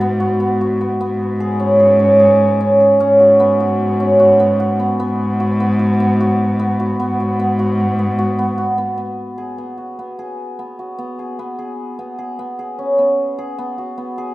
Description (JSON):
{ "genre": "contemporary instrumental, chamber music in an uneven meter", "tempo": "150 BPM", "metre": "5/4", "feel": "straight", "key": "G# minor", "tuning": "A4 = 441 Hz", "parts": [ { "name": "cimbalom", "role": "arpeggios", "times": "0.0-14.3 s", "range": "B3 to G#4", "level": "-15 LUFS", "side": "equal", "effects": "none" }, { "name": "rich cello", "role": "bass", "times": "0.0-9.0 s", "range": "G#2", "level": "-18 LUFS", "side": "equal", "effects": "none" } ], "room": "moderate recital hall reverb, RT60 1.6 s", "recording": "close, detailed microphones", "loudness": "-12 LUFS", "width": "side -18 dB against mid", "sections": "0.0-9.0 A section; 9.0-14.3 B section", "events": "none", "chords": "0.0 G#m7; 1.0 C#5/G#; 9.0 G#m7; 11.0 G#m/B" }